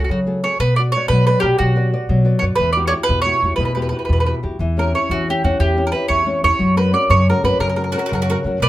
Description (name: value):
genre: italian folk, Italian serenade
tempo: 120 BPM (dotted quarters)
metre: 6/8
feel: straight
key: B harmonic minor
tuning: A4 = 441 Hz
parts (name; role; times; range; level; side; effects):
- mandolin; melody; 0.0-8.7 s; F#4 to D5; -18 LUFS; right 2 dB; none
- nylon-string guitar; accompaniment; 0.0-8.7 s; B2 to D5; -22 LUFS; left 2 dB; none
- upright bass; bass; 0.0-8.7 s; B1 to F#3; -18 LUFS; equal; none
- bowl-back mandolin; second line; 7.9-8.7 s; F#4 to B4; -25 LUFS; right 2 dB; none
room: moderate small room reverb, RT60 0.5 s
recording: none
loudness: -15 LUFS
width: side -15 dB against mid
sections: 0.6-8.7 A section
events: none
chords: 0.0 F#madd9; 0.6 Bm; 2.6 Emadd9; 4.6 C#dim/E; 6.6 F#